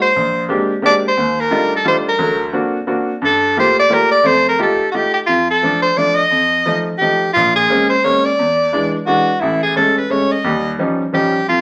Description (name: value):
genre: jazz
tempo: 175 BPM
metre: 3/4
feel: swing 63% on 8ths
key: unclear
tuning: A4 = 436 Hz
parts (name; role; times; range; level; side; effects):
- bright soprano saxophone; melody; 0.0-11.6 s; E4 to Eb5; -16 LUFS; equal; none
- clear baby grand piano; accompaniment; 0.0-11.6 s; A1 to G4; -20 LUFS; equal; none
room: wet studio reverb, RT60 0.8 s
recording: none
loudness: -15 LUFS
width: mono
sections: 0.0-5.3 A section; 5.3-11.6 B section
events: none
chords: 0.1 Bb13; 1.2 Ebmaj9#11; 2.2 D7b13; 3.2 Gm9; 4.3 F9; 5.3 F6; 6.3 F7; 7.3 Bbm9; 8.4 E7; 9.4 Amaj7; 10.4 Eb9